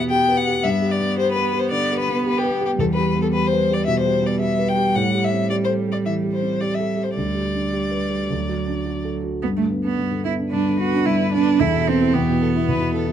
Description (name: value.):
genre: quick classical-period movement for piano trio.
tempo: 110 BPM.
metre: 4/4.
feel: straight.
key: G major.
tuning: A4 = 440 Hz.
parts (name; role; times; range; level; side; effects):
rich violin; melody; 0.0-13.1 s; G4 to G5; -23 LUFS; left 4 dB; none.
rich cello; second line; 0.0-13.1 s; F#3 to F#4; -23 LUFS; right 5 dB; none.
dark concert grand piano; accompaniment; 0.0-13.1 s; D2 to B4; -22 LUFS; left 1 dB; none.
room: light reverb.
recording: dark, warm production.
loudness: -18 LUFS.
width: side -9 dB against mid.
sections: 0.0-9.4 A section; 9.4-13.1 B section.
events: none.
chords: 0.0 Em; 0.6 G; 2.8 Em; 5.0 Am7; 7.2 G/D; 8.3 D; 9.4 G; 11.6 E5.